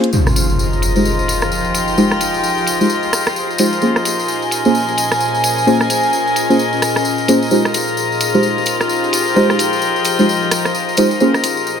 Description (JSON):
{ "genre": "UK garage, two-step garage", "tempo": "130 BPM", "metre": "4/4", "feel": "swing 60% on 16ths", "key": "F minor", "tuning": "A4 = 441 Hz", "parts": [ { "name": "ethereal airy pad", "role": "sustained chords", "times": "0.1-11.8 s", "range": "Bb2 to C5", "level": "-22 LUFS", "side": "left 2 dB", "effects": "ensemble chorus, built-in reverb, phaser" }, { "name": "garage drum kit", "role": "drums", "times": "0.0-11.5 s", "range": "hi-hat, rim click", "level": "-20 LUFS", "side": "right 1 dB", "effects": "low-pass filter on snare, low-pass filter on hats, low-pass filter on perc" }, { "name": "deep mellow chord stab", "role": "stabs", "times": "0.1-11.3 s", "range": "Ab3 to C5", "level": "-16 LUFS", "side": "equal", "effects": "chorus, ping-pong delay" }, { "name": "tambourine", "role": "percussion", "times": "0.1-11.8 s", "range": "none", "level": "-23 LUFS", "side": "left 2 dB", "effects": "none" }, { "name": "impact", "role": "sound effects", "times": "0.1-2.0 s", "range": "none", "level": "-18 LUFS", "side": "equal", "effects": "none" }, { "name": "dark chamber string section", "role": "texture", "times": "0.1-11.8 s", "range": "F4 to Ab5", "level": "-18 LUFS", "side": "left 1 dB", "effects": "none" } ], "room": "wet studio reverb, RT60 0.6 s", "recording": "none", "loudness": "-13 LUFS", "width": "side -7 dB against mid", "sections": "0.1-11.8 A section", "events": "impact 0.1-2.0; filter sweep on drum 0.1-11.8", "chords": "0.1 Fm7; 3.8 Bbm9; 7.5 Fm7; 11.2 Bbm9", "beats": "| 0.13 0.59 1.05 1.51 | 1.98 2.44 2.90 3.36 | 3.82 4.28 4.75 5.21 | 5.67 6.13 6.59 7.05 | 7.51 7.98 8.44 8.90 | 9.36 9.82 10.28 10.74 | 11.21 11.67" }